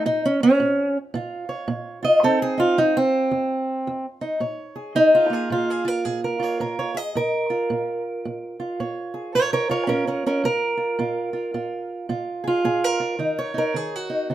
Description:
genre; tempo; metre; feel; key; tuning
acoustic country blues, solo or duo; 109 BPM; 4/4; swing 62% on 8ths; Bb minor; A4 = 443 Hz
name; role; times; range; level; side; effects
fingerpicked acoustic archtop guitar; solo; 0.0-14.3 s; F2 to Eb5; -20 LUFS; right 1 dB; none
room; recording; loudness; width
light reverb; minimal, uncompressed stereo recording; -20 LUFS; side -12 dB against mid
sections
0.0-4.4 A section; 4.4-14.3 B section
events
steel-string acoustic guitar solo 0.0-4.4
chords
0.1 Bbm; 2.2 F5; 4.4 Bbm7; 13.2 Ebm7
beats
| 0.05 0.59 1.14 1.68 | 2.22 2.77 3.31 3.86 | 4.40 4.95 5.50 6.04 | 6.59 7.14 7.69 8.24 | 8.79 9.34 9.89 10.44 | 10.99 11.54 12.09 12.64 | 13.19 13.74 14.29

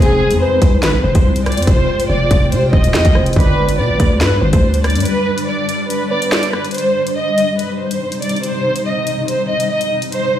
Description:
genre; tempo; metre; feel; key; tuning
hip hop, drill; 142 BPM; 4/4; half-time; C harmonic minor; A4 = 440 Hz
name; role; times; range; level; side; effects
dark studio violin section; melody; 0.0-10.4 s; Ab4 to Eb5; -18 LUFS; equal; low-pass filter, ping-pong delay
soft octave-layered synth lead; second line; 0.0-6.3 s; B4 to D5; -24 LUFS; right 3 dB; chorus, ping-pong delay
granular cloud pad; sustained chords; 0.0-10.4 s; C3 to G5; -22 LUFS; left 1 dB; built-in reverb
growling 808-style bass; bass; 0.0-5.0 s; Eb1 to C3; -16 LUFS; equal; none
drill drum kit; drums; 0.0-10.2 s; finger snaps, hi-hat, kick drum, rim click, snare drum; -16 LUFS; equal; none
room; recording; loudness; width
light reverb, digital ambience; played on a big sound system in a bare room, stone room reverb; -13 LUFS; side -11 dB against mid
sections
0.0-6.7 A section; 6.7-10.4 B section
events
break 5.1-6.7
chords
0.0 Fmadd9; 3.4 G; 6.7 Cm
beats
0.41 0.83 1.25 | 1.67 2.10 2.52 2.94 | 3.36 3.79 4.21 4.63 | 5.05 5.48 5.90 6.32 | 6.74 7.17 7.59 8.01 | 8.43 8.86 9.28 9.70 | 10.12

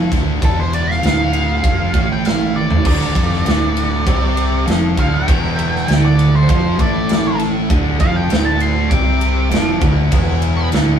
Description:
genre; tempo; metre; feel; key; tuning
stoner and doom metal; 99 BPM; 4/4; straight; D minor; A4 = 440 Hz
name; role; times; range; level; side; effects
thick fuzz guitar; riff; 0.0-11.0 s; D2 to C4; -20 LUFS; left 4 dB; distortion
thick fuzz guitar; riff; 0.0-11.0 s; D2 to C4; -23 LUFS; right 7 dB; distortion
fuzz fingered electric bass; bass; 0.0-11.0 s; D1 to C2; -20 LUFS; right 1 dB; overdrive
big rock drum kit; drums; 0.1-10.9 s; crash cymbal, kick drum, ride cymbal, snare drum, toms; -18 LUFS; right 1 dB; none
octave-fuzz lead guitar; melody; 0.4-10.7 s; A4 to D6; -22 LUFS; right 1 dB; distortion
distorted electric guitar; riff; 2.8-11.0 s; D2 to C4; -24 LUFS; right 1 dB; distortion
room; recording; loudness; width
light reverb; band playing live in one room, small room ambience; -13 LUFS; side -8 dB against mid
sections
0.0-11.0 A section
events
lead electric guitar solo 0.0-11.0; drum fill 2.5-2.9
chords
0.0 Dm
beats
| 0.42 1.03 1.64 2.25 | 2.85 3.46 4.07 4.67 | 5.28 5.88 6.49 7.10 | 7.70 8.31 8.91 9.52 | 10.12 10.73

